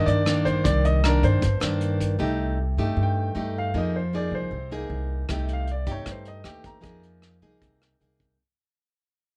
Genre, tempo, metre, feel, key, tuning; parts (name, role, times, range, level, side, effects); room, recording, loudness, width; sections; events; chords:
bossa nova; 155 BPM; 4/4; straight; C minor; A4 = 442 Hz
clear grand piano; melody; 0.0-7.0 s; Bb4 to Bb5; -31 LUFS; equal; plate reverb
nylon-string guitar; accompaniment; 0.0-8.4 s; G2 to Ab4; -30 LUFS; equal
upright bass; bass; 0.0-8.4 s; C2 to G2; -28 LUFS; equal
vintage brush drum kit; drums; 0.1-2.1, 5.3-8.3 s; hi-hat, kick drum, rim click; -33 LUFS; equal
light reverb; -25 LUFS; mono
0.0-2.2 A section; 2.2-8.4 B section
fade-out 2.2-8.4; grand piano solo 2.2-8.4
0.0 Cm9; 2.2 Cm6; 3.7 Fm7; 5.3 Cm6; 6.8 Fm7